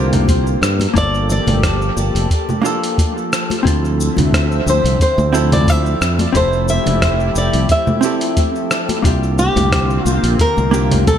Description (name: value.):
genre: sunset chillout.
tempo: 89 BPM.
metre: 4/4.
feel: swing 54% on 16ths.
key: F major.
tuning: A4 = 440 Hz.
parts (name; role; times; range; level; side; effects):
flamenco guitar; melody; 0.0-11.2 s; G4 to E5; -19 LUFS; equal; tape echo.
vintage hollow-body jazz guitar; accompaniment; 0.0-11.2 s; Bb3 to A4; -22 LUFS; moving between left 5 dB and right 4 dB; auto-pan, analog delay.
lush unison pad; sustained chords; 0.0-11.2 s; D3 to E5; -23 LUFS; equal; chorus, phaser.
modern bright fingered electric bass; bass; 0.0-11.2 s; F1 to G2; -17 LUFS; equal; tube saturation.
dusty soul sampler-style drum kit; drums; 0.1-11.2 s; congas, hi-hat, rim click, shaker; -21 LUFS; right 1 dB; dub echo.
electronic kick drum; drums; 0.3-11.2 s; none; -16 LUFS; equal; overdrive.
congas; percussion; 0.3-11.2 s; none; -27 LUFS; left 5 dB; none.
room: light reverb.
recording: echo-heavy mix.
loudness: -13 LUFS.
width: side -9 dB against mid.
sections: 0.0-11.2 A section.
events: none.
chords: 0.0 C9sus4; 0.6 Gm9; 3.7 Dm9; 6.0 Fmaj9; 9.0 C9sus4.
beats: 0.28 | 0.95 1.63 2.30 2.98 | 3.65 4.33 5.00 5.67 | 6.35 7.02 7.70 8.37 | 9.04 9.72 10.39 11.07.